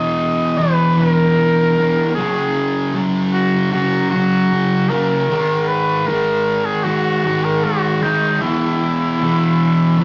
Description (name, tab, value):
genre	rock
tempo	77 BPM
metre	4/4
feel	straight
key	E lydian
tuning	A4 = 443 Hz
part	warm cor anglais	melody	0.0-10.0 s	D#4 to D#5	-21 LUFS	equal	none
part	thick fuzz guitar	riff	0.0-10.0 s	E2 to G#3	-19 LUFS	equal	distortion
room	wet stone room reverb, RT60 1.0 s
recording	rough rehearsal-room recording, tube saturation, nothing above 8.0 kHz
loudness	-17 LUFS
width	mono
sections	0.0-10.0 A section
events	none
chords	0.0 E5; 2.2 F#5; 5.3 G#5; 8.4 E5